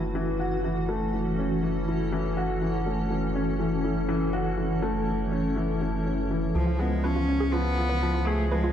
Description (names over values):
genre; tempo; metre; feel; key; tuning
electronica; 122 BPM; 4/4; straight; F# minor; A4 = 439 Hz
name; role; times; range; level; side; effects
granular cloud pad; sustained chords; 0.0-8.7 s; C#3 to A4; -31 LUFS; left 1 dB; built-in reverb
dark upright piano; riff; 0.0-8.7 s; E3 to G#4; -28 LUFS; left 1 dB; digital delay
round analog bass; bass; 0.0-8.7 s; F#1 to C#2; -30 LUFS; equal; tube saturation
clear cello; melody; 6.6-8.7 s; E#3 to C#4; -28 LUFS; equal; none
analog pluck; arpeggios; 6.7-8.7 s; E#4 to B4; -35 LUFS; right 5 dB; chorus, digital delay
room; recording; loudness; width
moderate concert hall reverb, RT60 1.7 s; none; -24 LUFS; side -9 dB against mid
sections
0.0-8.7 A section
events
none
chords
0.0 F#m7; 6.6 C#7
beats
0.16 | 0.65 1.14 1.63 2.12 | 2.62 3.11 3.60 4.09 | 4.58 5.08 5.57 6.06 | 6.55 7.04 7.54 8.03 | 8.52